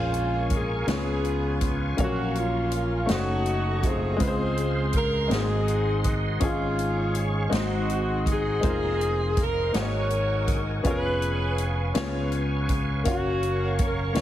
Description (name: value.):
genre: slow gospel.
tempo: 54 BPM (dotted quarters).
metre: 6/8.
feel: straight.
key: Db major.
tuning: A4 = 440 Hz.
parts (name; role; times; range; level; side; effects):
warm saxophone section; melody; 0.0-14.2 s; Ab3 to Db5; -28 LUFS; equal; none.
bright grand piano; accompaniment; 0.0-14.2 s; Ab2 to F5; -30 LUFS; left 2 dB; none.
bright tonewheel organ; sustained chords; 0.0-14.2 s; A3 to Db6; -35 LUFS; right 2 dB; slow rotary speaker, chorus vibrato.
fingered electric bass; bass; 0.0-14.2 s; F1 to Db2; -28 LUFS; equal; none.
swinging big-band drum kit; drums; 0.1-14.2 s; hi-hat, kick drum, snare drum; -29 LUFS; equal; none.
room: light reverb.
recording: heavily compressed radio sound, multiband compression.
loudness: -23 LUFS.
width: side -12 dB against mid.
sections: 0.0-14.2 A section.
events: none.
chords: 0.0 Bbm7; 0.9 Db7; 2.0 Gbmaj7/Bb; 3.1 Gbm6; 4.2 Dbmaj7; 5.3 Ab7; 6.4 Db/Ab; 7.5 Ab7; 8.6 F7sus4; 9.7 Ab9sus4; 10.8 Db7/F; 12.0 Db7; 13.1 Gbmaj7.